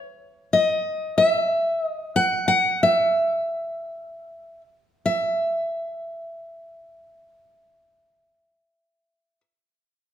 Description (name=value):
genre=folk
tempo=74-95 BPM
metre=3/4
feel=straight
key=unclear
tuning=A4 = 444 Hz
part: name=picked steel-string acoustic guitar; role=melody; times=0.5-9.4 s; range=D#5 to F#5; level=-20 LUFS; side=equal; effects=none
room=wet large studio reverb, RT60 1.2 s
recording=minimal, uncompressed stereo recording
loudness=-20 LUFS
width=side -10 dB against mid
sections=0.0-5.0 A section; 5.0-9.9 B section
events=slowing down 0.8-5.0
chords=none